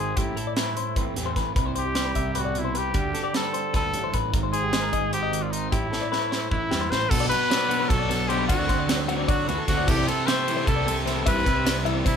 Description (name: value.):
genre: math rock and midwest emo.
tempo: 303 BPM (eighths).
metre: 7/8.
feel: straight.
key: unclear.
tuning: A4 = 439 Hz.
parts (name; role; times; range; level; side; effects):
clear trumpet; melody; 0.0-12.2 s; Eb4 to C5; -27 LUFS; left 1 dB; none.
twangy electric guitar; accompaniment; 0.0-12.2 s; G2 to A4; -31 LUFS; right 5 dB; none.
clean electric guitar; arpeggios; 0.0-12.2 s; G4 to F#5; -30 LUFS; left 8 dB; none.
fuzz picked electric bass; bass; 0.0-12.2 s; Ab1 to D3; -30 LUFS; equal; overdrive.
crisp fusion drum kit; drums; 0.2-12.2 s; crash cymbal, hi-hat, kick drum, ride cymbal, snare drum; -26 LUFS; right 1 dB; none.
overdriven semi-hollow guitar; riff; 7.1-12.1 s; D3 to F#4; -31 LUFS; left 2 dB; none.
room: light reverb.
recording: band playing live in one room.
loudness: -22 LUFS.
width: side -7 dB against mid.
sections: 0.0-7.1 A section; 7.1-12.2 B section.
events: drum fill 5.9-7.1.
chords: 0.2 Am9; 1.6 Cmaj7; 3.0 D7sus4; 4.3 Abmaj7; 5.7 Am9; 7.1 Bm7; 8.5 D7; 9.9 Am7/C; 11.3 Cmaj7.